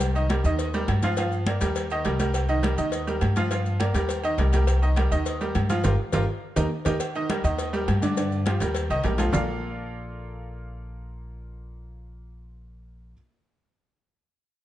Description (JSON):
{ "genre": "latin, salsa", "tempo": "206 BPM", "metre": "4/4", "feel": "straight", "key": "Bb major", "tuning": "A4 = 440 Hz", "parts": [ { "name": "bright upright piano", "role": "accompaniment", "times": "0.0-13.1 s", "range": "D3 to F5", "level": "-27 LUFS", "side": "right 1 dB", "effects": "none" }, { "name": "upright bass", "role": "bass", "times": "0.0-13.1 s", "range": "G1 to G2", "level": "-26 LUFS", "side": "equal", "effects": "none" }, { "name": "agogo bells and timbales", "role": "percussion", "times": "0.0-9.4 s", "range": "none", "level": "-35 LUFS", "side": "right 6 dB", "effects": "none" }, { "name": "congas", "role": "percussion", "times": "0.0-9.4 s", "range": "none", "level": "-31 LUFS", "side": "equal", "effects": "none" }, { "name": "cowbell and bongos", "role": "percussion", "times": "0.0-9.4 s", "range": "none", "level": "-34 LUFS", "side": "left 5 dB", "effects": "none" }, { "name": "maracas", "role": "percussion", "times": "0.0-9.4 s", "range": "none", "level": "-43 LUFS", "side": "left 5 dB", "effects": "none" } ], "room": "light reverb", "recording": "dark, warm production, nothing above 10.4 kHz", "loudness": "-22 LUFS", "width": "side -13 dB against mid", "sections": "0.0-7.0 A section; 7.0-9.3 B section; 9.3-11.7 C section", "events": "band accent 5.8-7.0; drum fill 6.1-7.0", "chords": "0.0 Cm7; 0.6 Eb; 1.2 Gm7; 1.8 Cm7; 2.9 Eb; 3.5 Gm7; 4.1 Cm7; 5.3 Eb; 5.8 Gm7; 6.4 Eb; 8.2 Gm7; 8.8 Eb; 9.3 Bbmaj7", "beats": "| 0.00 0.30 0.59 0.88 | 1.17 1.47 1.76 2.05 | 2.34 2.63 2.93 3.22 | 3.51 3.80 4.09 4.38 | 4.68 4.97 5.26 5.55 | 5.84 6.13 6.43 6.72 | 7.01 7.30 7.59 7.88 | 8.17 8.46 8.76 9.05 | 9.34 9.63 9.92 10.21 | 10.50 10.79 11.08 11.38" }